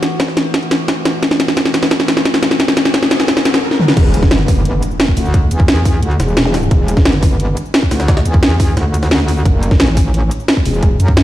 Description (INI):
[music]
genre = dark technical drum and bass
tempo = 175 BPM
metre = 4/4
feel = straight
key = E minor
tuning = A4 = 440 Hz
[part]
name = metallic inharmonic drone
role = sustained chords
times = 0.0-3.9 s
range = E3 to F#4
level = -24 LUFS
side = left 1 dB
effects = chorus, built-in reverb, sidechain pumping
[part]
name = drum and bass drum kit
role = drums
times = 0.0-11.2 s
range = crash cymbal, hi-hat, shaker, snare drum, toms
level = -15 LUFS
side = equal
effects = overdrive
[part]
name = jungle sampler-style drum kit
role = drums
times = 0.0-11.2 s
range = hi-hat, snare drum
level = -25 LUFS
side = equal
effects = none
[part]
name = riser, impact and zap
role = sound effects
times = 0.8-6.5 s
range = none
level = -22 LUFS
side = equal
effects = none
[part]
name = electronic kick drum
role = drums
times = 0.2-11.2 s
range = none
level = -13 LUFS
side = equal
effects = overdrive, high-pass filter on kick
[part]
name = metallic wobble bass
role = bass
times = 4.0-11.2 s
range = E1 to F#2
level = -14 LUFS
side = equal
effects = chorus, sidechain pumping
[sound]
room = light reverb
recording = played on a big sound system in a bare room, stone room reverb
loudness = -11 LUFS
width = side -13 dB against mid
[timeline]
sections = 0.0-4.0 A section; 4.0-11.2 B section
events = build-up 0.0-4.0; drum fill 0.0-3.6, 3.7; riser 0.8-4.0; drop 4.0-11.2; impact 4.0-5.3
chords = 0.0 F#m7; 4.0 Em; 9.5 F#m7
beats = 0.20 0.54 0.88 | 1.23 1.57 1.91 2.25 | 2.60 2.94 3.28 3.63 | 3.97 4.31 4.66 5.00 | 5.34 5.68 6.03 6.37 | 6.71 7.05 7.40 7.74 | 8.08 8.43 8.77 9.11 | 9.46 9.80 10.14 10.48 | 10.83 11.17